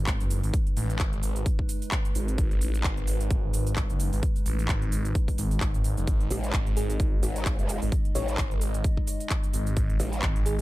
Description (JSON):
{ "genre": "bass house", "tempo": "130 BPM", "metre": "4/4", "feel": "swing 56% on 16ths", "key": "G# phrygian", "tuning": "A4 = 440 Hz", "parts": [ { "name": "dark analog pad", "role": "sustained chords", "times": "0.0-10.6 s", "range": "G#3 to D#5", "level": "-37 LUFS", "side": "equal", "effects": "chorus, sidechain pumping" }, { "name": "phased detuned saw bass", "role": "bass", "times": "0.0-10.6 s", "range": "F#1 to A1", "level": "-28 LUFS", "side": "equal", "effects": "phaser, overdrive, sidechain pumping" }, { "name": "impact", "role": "sound effects", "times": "0.0-0.5 s", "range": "none", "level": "barely audible", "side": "none", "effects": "none" }, { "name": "big-room dance drum kit", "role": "drums", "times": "0.1-10.6 s", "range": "cabasa, handclaps, hi-hat", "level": "-34 LUFS", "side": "right 1 dB", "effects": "none" }, { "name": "electronic kick drum", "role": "drums", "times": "0.1-10.3 s", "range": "none", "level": "-26 LUFS", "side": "equal", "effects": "none" }, { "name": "growl bass", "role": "bass", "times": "6.3-10.2 s", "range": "F#1 to A1", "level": "-29 LUFS", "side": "equal", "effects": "chorus, overdrive, sidechain pumping" }, { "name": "bell-like FM electric piano", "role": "melody", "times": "6.8-10.6 s", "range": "G#4 to C#5", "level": "-36 LUFS", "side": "equal", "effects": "chorus, tremolo, ping-pong delay" } ], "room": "digital ambience", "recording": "none", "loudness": "-24 LUFS", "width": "side -18 dB against mid", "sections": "0.0-10.6 A section", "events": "impact 0.0-0.5", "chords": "0.0 G#m" }